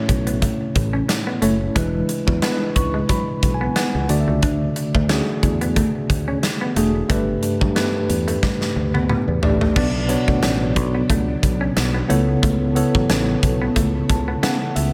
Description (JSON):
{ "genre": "1980s-style pop", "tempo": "90 BPM", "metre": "4/4", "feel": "swing 55% on 16ths", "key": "A major", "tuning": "A4 = 441 Hz", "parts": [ { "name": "tine electric piano", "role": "accompaniment", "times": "0.0-14.9 s", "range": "G2 to C#6", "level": "-24 LUFS", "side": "equal", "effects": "medium tremolo" }, { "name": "clean electric guitar", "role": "riff", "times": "0.1-14.8 s", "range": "F#3 to D4", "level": "-29 LUFS", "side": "equal", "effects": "subtle chorus, delay" }, { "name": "fingered electric bass", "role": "bass", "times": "0.1-14.9 s", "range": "E1 to C#3", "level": "-26 LUFS", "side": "equal", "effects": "none" }, { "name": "big rock drum kit", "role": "drums", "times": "0.1-14.9 s", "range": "crash cymbal, hi-hat, kick drum, snare drum, toms", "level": "-24 LUFS", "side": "equal", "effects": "gated reverb" }, { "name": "ensemble organ-string", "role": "sustained chords", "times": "9.8-14.9 s", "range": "C#3 to D4", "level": "-30 LUFS", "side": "equal", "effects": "none" } ], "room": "light reverb, studio ambience", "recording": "none", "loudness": "-20 LUFS", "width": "mono", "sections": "0.0-9.8 A section; 9.8-14.9 B section", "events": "tine electric piano fill 2.4-4.4, 13.8-14.9; drum fill 8.4-9.8", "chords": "0.0 A; 1.8 E7; 4.1 D; 7.1 Gadd9; 9.8 Bm; 12.1 Aadd9" }